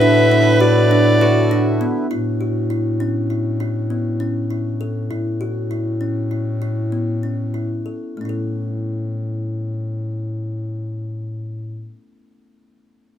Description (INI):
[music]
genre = contemporary instrumental, chamber music in an uneven meter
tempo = 197 BPM (eighths)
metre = 5/8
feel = uneven beats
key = A major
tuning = A4 = 441 Hz
[part]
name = clear soprano saxophone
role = melody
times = 0.0-1.8 s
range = D5 to E5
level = -17 LUFS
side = equal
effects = none
[part]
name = clear viola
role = second line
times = 0.0-1.8 s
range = F#4 to B4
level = -19 LUFS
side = equal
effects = none
[part]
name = pedal harmonium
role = sustained chords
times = 0.0-2.1 s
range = D3 to E4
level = -24 LUFS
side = left 1 dB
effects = none
[part]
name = kalimba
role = arpeggios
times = 0.0-12.1 s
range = A3 to A4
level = -22 LUFS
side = right 2 dB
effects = none
[part]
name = mellow bass clarinet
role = bass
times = 0.0-12.0 s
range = A2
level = -21 LUFS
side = left 1 dB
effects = none
[sound]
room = little or no reverb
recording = close, detailed microphones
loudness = -18 LUFS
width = side -10 dB against mid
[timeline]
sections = 0.0-2.1 A section; 2.1-8.2 B section; 8.2-11.3 C section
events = slowing down 5.1-8.2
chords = 0.0 Bm/A; 2.1 A